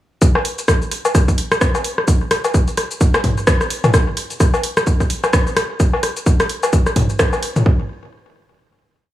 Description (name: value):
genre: techno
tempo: 129 BPM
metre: 4/4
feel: swing 58% on 16ths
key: none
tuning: none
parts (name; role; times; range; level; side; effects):
- electronic kick drum; drums; 0.2-7.8 s; none; -15 LUFS; equal; overdrive
- house drum kit; drums; 0.2-7.6 s; hi-hat, rim click, shaker; -23 LUFS; equal; overdrive
- techno drum kit; percussion; 0.4-7.6 s; rim click, toms, woodblock; -19 LUFS; left 1 dB; digital delay
room: little or no reverb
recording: small room ambience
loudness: -14 LUFS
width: side -14 dB against mid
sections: 0.2-7.7 drop; 7.7-9.1 final hit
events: drop 0.2-7.7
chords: none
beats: | 0.22 0.68 1.15 1.61 | 2.08 2.54 3.01 3.47 | 3.94 4.40 4.87 5.33 | 5.80 6.26 6.73 7.19 | 7.66